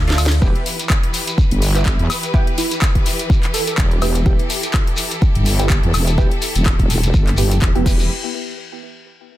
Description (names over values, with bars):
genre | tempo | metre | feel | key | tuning
bass house | 125 BPM | 4/4 | swing 56% on 16ths | E minor | A4 = 440 Hz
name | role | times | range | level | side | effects
clear studio string section | sustained chords | 0.0-8.1 s | D3 to B4 | -27 LUFS | left 1 dB | sidechain pumping
band-passed chord stab | stabs | 0.1-8.0 s | A3 to G4 | -26 LUFS | right 2 dB | chorus, phaser, vintage 12-bit sampler grit, sidechain pumping, ping-pong delay
house drum kit | drums | 0.1-8.0 s | crash cymbal, handclaps, hi-hat, ride cymbal, snare drum, woodblock | -23 LUFS | left 2 dB | overdrive, small room ambience
shekere | percussion | 0.2-8.1 s | none | -28 LUFS | left 2 dB | none
wobble bass | bass | 0.4-8.1 s | E1 to E2 | -17 LUFS | equal | chorus, tube saturation, sidechain pumping
electronic kick drum | drums | 0.4-8.0 s | none | -16 LUFS | equal | small room ambience
plucky unison lead | melody | 2.6-3.7 s | E4 to A4 | -26 LUFS | right 4 dB | analog chorus, ping-pong delay
room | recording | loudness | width
little or no reverb | dense, heavily limited modern master | -14 LUFS | side -14 dB against mid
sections
0.4-8.1 A section; 8.1-9.4 B section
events
drum fill 0.0-0.4; filter sweep on wobble bass 0.4-8.1; filter sweep on synth stab 0.4-8.1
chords
0.4 Em; 8.1 N.C.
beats
| 0.42 0.90 1.38 1.86 | 2.34 2.82 3.30 3.78 | 4.26 4.74 5.22 5.70 | 6.18 6.66 7.14 7.62